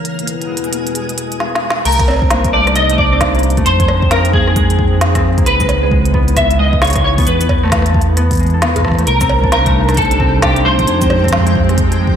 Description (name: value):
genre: IDM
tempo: 133 BPM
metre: 4/4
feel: swing 62% on 16ths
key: unclear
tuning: A4 = 441 Hz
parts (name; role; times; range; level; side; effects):
- warbly tape-like pad; sustained chords; 0.0-12.2 s; E2 to G5; -22 LUFS; right 2 dB; chorus, built-in reverb
- twinkling granular texture; texture; 0.0-1.4, 9.4-12.2 s; G#3 to G#4; -26 LUFS; right 1 dB; built-in reverb, ensemble chorus
- organic electronic drum kit; drums; 0.1-12.0 s; cowbell, crash cymbal, hi-hat, rim click, shaker, snare drum; -19 LUFS; equal; gated reverb, ping-pong delay
- clean electric guitar; melody; 1.9-12.0 s; G4 to E5; -16 LUFS; equal; ensemble chorus, ping-pong delay
- concert harp; arpeggios; 1.9-12.2 s; Ab3 to A4; -20 LUFS; left 2 dB; digital delay
- dark detuned saw bass; bass; 1.9-12.2 s; C2 to F2; -15 LUFS; equal; none
- electronic kick drum; drums; 2.0-12.2 s; none; -17 LUFS; equal; none
room: moderate plate reverb, RT60 2.1 s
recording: bright 1980s-style digital production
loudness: -11 LUFS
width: side -8 dB against mid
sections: 0.0-1.9 A section; 1.9-12.2 B section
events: filter sweep on drum 0.0-1.9; drum fill 1.4-1.9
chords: 0.1 E5; 1.9 Cm7; 3.7 Fm7; 5.5 C#m7; 7.3 Esus4; 9.1 Cm7; 10.9 Fm7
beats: | 0.05 0.50 0.95 1.40 | 1.85 2.31 2.76 3.21 | 3.66 4.11 4.56 5.01 | 5.46 5.92 6.37 6.82 | 7.27 7.72 8.17 8.62 | 9.07 9.52 9.97 10.43 | 10.88 11.33 11.78